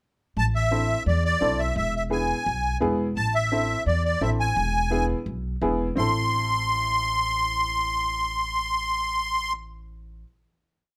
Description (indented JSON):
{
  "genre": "latin",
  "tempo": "171 BPM",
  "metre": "4/4",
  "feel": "straight",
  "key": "A harmonic minor",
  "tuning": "A4 = 441 Hz",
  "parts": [
    { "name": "musette accordion", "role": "melody", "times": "0.4-9.5 s", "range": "D5 to C6", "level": "-26 LUFS", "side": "equal", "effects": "none" },
    { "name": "upright bass", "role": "bass", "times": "0.4-10.2 s", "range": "E1 to E2", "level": "-30 LUFS", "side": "equal", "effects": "none" },
    { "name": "clear upright piano", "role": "accompaniment", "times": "0.7-10.2 s", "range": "B3 to A4", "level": "-31 LUFS", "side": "equal", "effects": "none" }
  ],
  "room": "light reverb",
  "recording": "band playing live in one room",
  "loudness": "-25 LUFS",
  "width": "mono",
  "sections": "0.4-6.0 A section; 6.0-8.8 final chord",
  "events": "none",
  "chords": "0.4 Am; 1.8 E; 3.2 Am; 4.6 E; 6.0 Am"
}